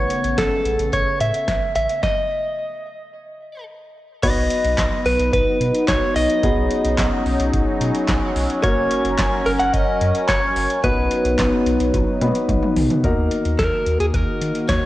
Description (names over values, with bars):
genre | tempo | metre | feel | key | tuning
synth-pop | 109 BPM | 4/4 | straight | B major from 4.2 s | A4 = 440 Hz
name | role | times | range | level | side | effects
direct-recorded clean electric guitar | melody | 0.0-14.9 s | G#4 to F#5 | -21 LUFS | equal | spring reverb, cassette tape
sweeping resonant pad | sustained chords | 0.0-14.9 s | C#3 to A#4 | -23 LUFS | left 1 dB | chorus, phaser, cassette tape
round analog bass | bass | 0.0-14.8 s | F#1 to D#3 | -24 LUFS | equal | none
electro analog drum machine | drums | 0.1-14.8 s | crash cymbal, handclaps, hi-hat, kick drum, snare drum, toms | -23 LUFS | equal | none
warm concert grand piano | accompaniment | 4.2-14.9 s | A#3 to B4 | -25 LUFS | left 1 dB | cassette tape
room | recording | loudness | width
light reverb | home recording on cassette | -17 LUFS | side -16 dB against mid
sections
0.0-4.2 A section; 4.2-13.0 B section; 13.0-14.9 C section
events
stop 2.0-4.2; drum fill 11.9-13.0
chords
0.0 Aadd9; 2.0 N.C.; 4.2 B; 8.6 F#; 10.8 B; 13.0 D#m